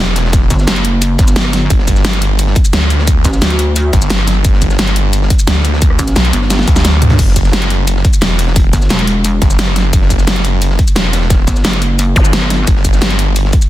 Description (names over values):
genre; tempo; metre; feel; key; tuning
dark technical drum and bass; 175 BPM; 4/4; straight; unclear; A4 = 441 Hz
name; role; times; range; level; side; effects
snarling distorted saw bass; bass; 0.0-13.5 s; E1 to D2; -13 LUFS; equal; distortion, overdrive
crunchy breakbeat drum kit; drums; 0.2-13.7 s; hi-hat, snare drum; -26 LUFS; equal; none
dubstep drum kit; drums; 0.2-13.7 s; crash cymbal, hi-hat, rim click, shaker, snare drum, toms; -16 LUFS; equal; none
electronic kick drum; drums; 0.3-13.6 s; none; -11 LUFS; equal; none
pulsing pluck wobble bass; bass; 0.5-3.9, 6.0-6.7, 8.7-9.4, 11.5-12.7 s; E1 to D2; -13 LUFS; equal; chorus
zap; sound effects; 12.2 s; none; -21 LUFS; equal; none
room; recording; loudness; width
little or no reverb; dense, heavily limited modern master; -9 LUFS; side -14 dB against mid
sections
0.0-13.7 A section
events
drum fill 6.5-7.2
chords
0.0 Emadd9; 1.7 G5; 7.2 Emadd9; 12.7 N.C.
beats
| 0.33 0.68 1.02 1.36 | 1.70 2.05 2.39 2.73 | 3.08 3.42 3.76 4.10 | 4.45 4.79 5.13 5.47 | 5.82 6.16 6.50 6.85 | 7.19 7.53 7.88 8.22 | 8.56 8.90 9.25 9.59 | 9.93 10.28 10.62 10.96 | 11.30 11.65 11.99 12.33 | 12.68 13.02 13.36